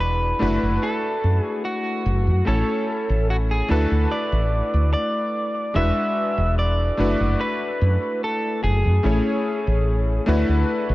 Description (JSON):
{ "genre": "vaporwave", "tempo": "73 BPM", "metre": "4/4", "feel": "straight", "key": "D lydian", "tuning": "A4 = 440 Hz", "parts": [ { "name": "lightly driven lead guitar", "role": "melody", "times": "0.0-10.2 s", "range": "F#4 to E5", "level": "-25 LUFS", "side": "equal", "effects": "vintage 12-bit sampler grit, tape echo" }, { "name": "clear electric grand piano", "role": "accompaniment", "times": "0.0-10.9 s", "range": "G#3 to C#5", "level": "-25 LUFS", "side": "left 1 dB", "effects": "lush chorus" }, { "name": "woody fretless electric bass", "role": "bass", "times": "0.0-10.9 s", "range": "E1 to F#2", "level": "-20 LUFS", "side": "equal", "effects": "lush chorus" } ], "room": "light reverb", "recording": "cassette tape", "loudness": "-19 LUFS", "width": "side -18 dB against mid", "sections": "0.0-5.8 A section; 5.8-10.9 B section", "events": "break 4.9-5.8", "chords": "0.4 D69/F#; 2.5 A; 3.7 D69; 5.8 E9; 7.0 D69/F#; 9.0 Amaj7; 10.3 D69" }